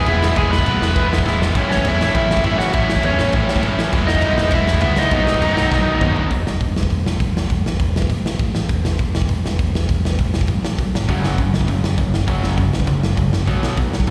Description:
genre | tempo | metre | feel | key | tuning
punk rock | 201 BPM | 4/4 | straight | E major | A4 = 441 Hz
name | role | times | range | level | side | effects
biting lead guitar | melody | 0.0-6.1 s | C#4 to B5 | -23 LUFS | equal | overdrive, digital delay
distorted electric guitar | riff | 0.0-6.3 s | A2 to E4 | -30 LUFS | equal | none
overdriven electric guitar | riff | 0.0-6.3, 11.1-14.1 s | F#2 to E4 | -28 LUFS | equal | slapback echo
tight distorted guitar | riff | 0.0-6.3, 11.1-14.1 s | F#2 to E4 | -27 LUFS | equal | distortion, slapback echo
picked electric bass | bass | 0.1-14.1 s | E1 to F#2 | -23 LUFS | equal | none
raw garage drum kit | drums | 0.1-14.1 s | crash cymbal, hi-hat, kick drum, snare drum, toms | -22 LUFS | equal | none
room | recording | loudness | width
little or no reverb | live gig heard through the venue's PA, recital hall reverb | -18 LUFS | mono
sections
0.0-6.3 A section; 6.3-14.1 B section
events
drum fill 1.3, 5.7-6.3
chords
0.0 E; 1.6 A; 3.9 E; 5.1 B; 6.3 N.C.; 8.7 Esus4; 10.8 G#m; 11.1 F#5; 13.5 B5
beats
0.07 | 0.36 0.66 0.96 1.26 | 1.55 1.85 2.15 2.44 | 2.74 3.04 3.34 3.63 | 3.93 4.23 4.53 4.82 | 5.12 5.42 5.71 6.01 | 6.31 6.61 6.91 7.21 | 7.50 7.80 8.10 8.40 | 8.70 9.00 9.30 9.60 | 9.89 10.19 10.49 10.79 | 11.09 11.39 11.69 11.99 | 12.29 12.59 12.88 13.18 | 13.48 13.78 14.08

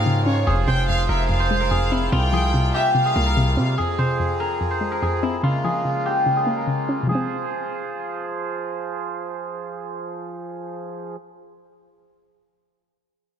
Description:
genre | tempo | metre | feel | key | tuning
hip hop | 145 BPM | 4/4 | half-time | F minor | A4 = 438 Hz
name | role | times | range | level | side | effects
steel-string zither | melody | 0.0-9.4 s | E4 to C5 | -24 LUFS | equal | low-pass filter, ping-pong delay
warm studio violin section | second line | 0.0-3.7 s | Db5 to G5 | -27 LUFS | equal | ping-pong delay
soft round pluck | accompaniment | 0.0-11.7 s | F2 to Db4 | -24 LUFS | left 1 dB | chorus, low-pass filter
accordion | sustained chords | 0.0-11.2 s | F2 to C5 | -28 LUFS | right 2 dB | low-pass filter
hard-hitting 808-style bass | bass | 0.0-3.8 s | F1 to C3 | -22 LUFS | equal | none
room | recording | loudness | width
light reverb, small room ambience | none | -20 LUFS | side -8 dB against mid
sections
0.0-3.8 A section; 3.8-7.1 B section; 7.1-10.4 C section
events
filter sweep 3.8-7.1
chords
0.5 Fm; 2.1 C7sus4; 3.8 Fm; 5.4 Db6; 7.1 Fm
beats
0.06 | 0.47 0.88 1.30 1.71 | 2.12 2.54 2.95 3.37 | 3.78 4.19 4.61 5.02 | 5.43 5.85 6.26 6.68 | 7.09 7.50 7.92 8.33 | 8.74 9.16 9.57 9.99

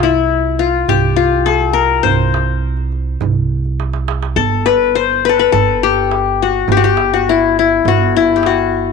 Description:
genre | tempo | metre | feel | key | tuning
Turkish makam ensemble | 103 BPM | 4/4 | straight | C makam hicaz, G makam rast from 4.4 s | A4 = 440 Hz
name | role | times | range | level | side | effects
qanun | melody | 0.0-8.9 s | E4 to C5 | -12 LUFS | left 10 dB | none
upright bass | bass | 0.0-8.9 s | G1 to C2 | -19 LUFS | right 2 dB | none
darbuka | percussion | 0.0-8.6 s | none | -20 LUFS | right 9 dB | none
room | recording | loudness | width
light reverb, small room ambience | 1960s-style stereo with parts hard left and right | -12 LUFS | side -5 dB against mid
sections
0.0-4.4 A section; 4.4-8.9 B section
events
drum fill 3.8-4.4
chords
none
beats
0.30 0.89 1.47 | 2.05 2.63 3.21 3.79 | 4.37 4.95 5.53 6.11 | 6.69 7.27 7.85 8.43

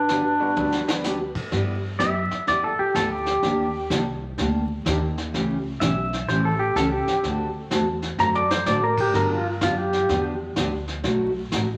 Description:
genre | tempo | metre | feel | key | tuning
country, western swing | 126 BPM | 4/4 | swing 66% on 8ths | G major | A4 = 440 Hz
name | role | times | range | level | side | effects
clean lap steel guitar | melody | 0.0-1.3 s | B4 | -37 LUFS | equal | none
growling clarinet | second line | 0.0-1.3 s | D4 | -25 LUFS | equal | none
upright bass | bass | 0.0-11.8 s | G1 to A2 | -32 LUFS | equal | none
picked steel-string acoustic guitar | accompaniment | 0.1-11.6 s | B2 to A4 | -29 LUFS | equal | none
vintage brush drum kit | drums | 0.1-11.8 s | brushed snare drum, crash cymbal, hi-hat, kick drum, snare drum, toms | -32 LUFS | equal | none
bright upright piano | accompaniment | 0.4-1.0 s | G3 to G4 | -34 LUFS | equal | none
pedal steel guitar | second line | 2.0-10.2 s | F4 to Bb5 | -25 LUFS | equal | none
room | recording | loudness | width
wet large studio reverb, RT60 1.4 s | vinyl crackle | -23 LUFS | mono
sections
0.0-1.5 A section; 1.5-11.8 B section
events
drum fill 0.6-1.0, 8.2-8.7; pedal steel guitar solo 1.5-11.8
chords
0.0 Gmaj7; 1.5 G6; 3.4 Ebmaj7; 5.3 A7; 7.2 D7; 9.1 Gmaj7; 11.0 B7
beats
0.09 0.57 1.05 | 1.52 2.00 2.48 2.95 | 3.43 3.90 4.38 4.86 | 5.33 5.81 6.29 6.76 | 7.24 7.71 8.19 8.66 | 9.14 9.62 10.09 10.57 | 11.04 11.52

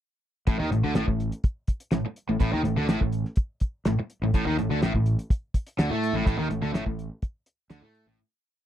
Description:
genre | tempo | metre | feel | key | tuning
classic rock | 125 BPM | 4/4 | straight | unclear | A4 = 440 Hz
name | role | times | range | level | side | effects
cranked stack guitar | riff | 0.5-8.2 s | A2 to A3 | -26 LUFS | equal | overdrive
growling fingered electric bass | bass | 0.5-8.2 s | A1 to A2 | -29 LUFS | equal | overdrive
cloth-damped thuddy drum kit | drums | 0.5-8.1 s | hi-hat, kick drum, snare drum | -24 LUFS | equal | none
room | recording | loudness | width
little or no reverb | dry, close 1970s-style studio recording | -24 LUFS | side -11 dB against mid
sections
0.5-8.2 riff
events
fade-out 6.3-8.2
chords
0.5 Asus4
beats
| 0.48 0.97 1.45 1.93 | 2.42 2.90 3.38 3.86 | 4.34 4.82 5.30 5.79 | 6.27 6.75 7.23 7.71

